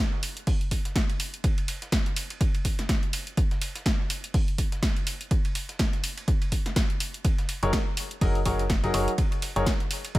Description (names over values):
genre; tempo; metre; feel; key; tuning
piano house; 124 BPM; 4/4; swing 57% on 16ths; F# major; A4 = 440 Hz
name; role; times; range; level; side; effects
dusty soul sampler-style drum kit; drums; 0.1-10.2 s; hi-hat, ride cymbal, snare drum; -41 LUFS; right 4 dB; overdrive, high-pass filter on snare, high-pass filter on cymbals, high-pass filter on hats
punchy analog drum machine; drums; 0.2-10.2 s; hi-hat, snare drum; -31 LUFS; equal; none
electronic kick drum; drums; 0.5-10.2 s; none; -25 LUFS; equal; none
clear grand piano; riff; 7.6-10.2 s; F#3 to D#5; -29 LUFS; left 1 dB; sidechain pumping, ping-pong delay
solid FM bass; bass; 7.6-10.2 s; F#1; -28 LUFS; equal; sidechain pumping
room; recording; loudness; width
little or no reverb; none; -24 LUFS; side -18 dB against mid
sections
0.0-10.2 A section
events
none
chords
0.0 N.C.; 7.2 F#69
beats
0.47 0.96 | 1.44 1.92 2.41 2.89 | 3.38 3.86 4.34 4.83 | 5.31 5.79 6.28 6.76 | 7.25 7.73 8.21 8.70 | 9.18 9.67 10.15